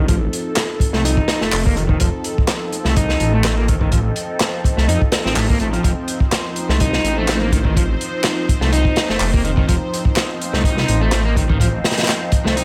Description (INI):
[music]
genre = breakbeat, breaks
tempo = 125 BPM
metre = 4/4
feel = swing 54% on 16ths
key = unclear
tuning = A4 = 440 Hz
[part]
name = phased analog pad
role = sustained chords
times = 0.0-12.6 s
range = F3 to C5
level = -27 LUFS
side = equal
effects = phaser, chorus, sidechain pumping
[part]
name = crunchy overdriven guitar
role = riff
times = 0.0-12.6 s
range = Eb3 to Eb4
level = -25 LUFS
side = equal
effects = vintage 12-bit sampler grit, low-pass filter, delay
[part]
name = phased detuned saw bass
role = bass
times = 0.0-12.6 s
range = F1 to F2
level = -22 LUFS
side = equal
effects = phaser
[part]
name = crunchy breakbeat drum kit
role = drums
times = 0.1-12.6 s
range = hi-hat, kick drum, snare drum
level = -21 LUFS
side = equal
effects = none
[part]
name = electronic handclaps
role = drums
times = 0.6-12.2 s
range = none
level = -27 LUFS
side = equal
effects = overdrive
[sound]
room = small room ambience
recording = none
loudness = -18 LUFS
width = mono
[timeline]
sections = 0.0-12.6 A section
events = filter sweep on overdriven electric guitar 0.0-12.6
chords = 0.0 F7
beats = | 0.09 0.57 1.05 1.53 | 2.01 2.49 2.97 3.45 | 3.93 4.41 4.89 5.37 | 5.85 6.33 6.81 7.29 | 7.77 8.25 8.73 9.21 | 9.69 10.17 10.65 11.13 | 11.61 12.09 12.57